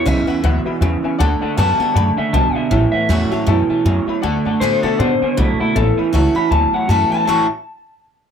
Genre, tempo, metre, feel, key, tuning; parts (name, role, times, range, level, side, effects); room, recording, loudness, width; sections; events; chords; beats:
rock; 158 BPM; 4/4; swing 59% on 8ths; A major; A4 = 441 Hz
electric guitar through a small old amp; melody; 0.0-7.5 s; E4 to B5; -19 LUFS; left 4 dB; analog delay
picked steel-string acoustic guitar; accompaniment; 0.0-7.5 s; E2 to F#4; -25 LUFS; left 2 dB
electric guitar through a small old amp; riff; 0.0-7.5 s; E2 to C#5; -19 LUFS; right 5 dB; analog chorus
warm upright piano; accompaniment; 0.1-7.5 s; B4 to B5; -27 LUFS; left 11 dB
upright bass; bass; 0.1-7.5 s; A1 to B2; -18 LUFS; equal
moderate studio ambience, RT60 0.5 s; -14 LUFS; side -8 dB against mid
0.0-4.2 A section; 4.2-7.3 B section; 7.3-8.3 C section
0.0 E6; 1.2 D6; 2.7 A6; 4.2 D6; 5.8 A6
0.06 0.44 0.82 | 1.20 1.58 1.96 2.34 | 2.71 3.10 3.47 3.85 | 4.23 4.61 4.99 5.37 | 5.75 6.13 6.51 6.89 | 7.27